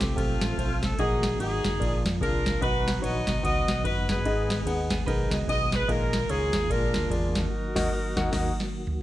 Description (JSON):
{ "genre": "uptempo gospel", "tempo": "147 BPM", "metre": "4/4", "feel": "swing 61% on 8ths", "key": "Eb minor", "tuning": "A4 = 440 Hz", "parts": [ { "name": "clear saxophone section", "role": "melody", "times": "0.0-8.7 s", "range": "A3 to D#5", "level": "-29 LUFS", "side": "equal", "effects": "none" }, { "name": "percussive tonewheel organ", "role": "sustained chords", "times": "0.0-9.0 s", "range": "D3 to A4", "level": "-36 LUFS", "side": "right 2 dB", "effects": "slow rotary speaker, chorus vibrato" }, { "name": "fingered electric bass", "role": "bass", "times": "0.0-8.5 s", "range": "Gb1 to F2", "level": "-31 LUFS", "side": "equal", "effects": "none" }, { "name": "booming analog drum machine", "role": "drums", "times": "0.0-9.0 s", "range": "crash cymbal, kick drum, ride cymbal, snare drum, toms", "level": "-28 LUFS", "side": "equal", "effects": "none" }, { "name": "warm grand piano", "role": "accompaniment", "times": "0.2-8.5 s", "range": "Ab2 to F#5", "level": "-32 LUFS", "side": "left 2 dB", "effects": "none" }, { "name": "clean electric guitar", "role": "second line", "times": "4.9-5.9 s", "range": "Cb4 to Eb5", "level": "-38 LUFS", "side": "right 6 dB", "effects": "spring reverb" } ], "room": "little or no reverb", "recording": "none", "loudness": "-24 LUFS", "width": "side -15 dB against mid", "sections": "0.0-9.0 A section", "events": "band accent 7.5-9.0; drum fill 8.3-9.0", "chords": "0.0 F; 1.0 Ebm/Bb; 1.8 Bb; 2.6 B; 4.3 Abm; 5.9 Bb7sus4; 6.7 Bb7; 7.5 Ebm" }